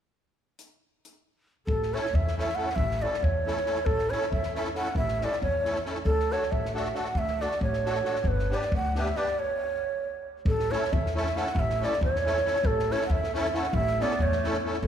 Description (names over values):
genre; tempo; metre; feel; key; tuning
balkan folk, Balkan wedding band; 274 BPM (eighths); 5/8; straight; A mixolydian; A4 = 440 Hz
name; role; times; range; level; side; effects
compact cocktail drum kit; percussion; 0.6-14.9 s; hi-hat, kick drum, snare drum; -32 LUFS; left 1 dB; none
breathy mellow ney; melody; 1.7-14.9 s; A4 to F#5; -28 LUFS; right 2 dB; none
upright bass; bass; 1.7-14.9 s; G1 to E2; -31 LUFS; equal; none
musette accordion; accompaniment; 1.9-14.8 s; A3 to B4; -33 LUFS; left 1 dB; none
clear clarinet; second line; 14.0-14.6 s; A3 to B3; -33 LUFS; right 4 dB; none
room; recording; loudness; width
moderate church reverb, RT60 2.9 s; recorded in a church or concert hall; -25 LUFS; side -9 dB against mid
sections
0.6-1.7 A section; 1.7-10.5 B section; 10.5-14.9 B section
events
stop 9.4-10.5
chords
0.6 N.C.; 1.7 A; 6.1 D; 8.3 G; 9.4 N.C.; 10.5 A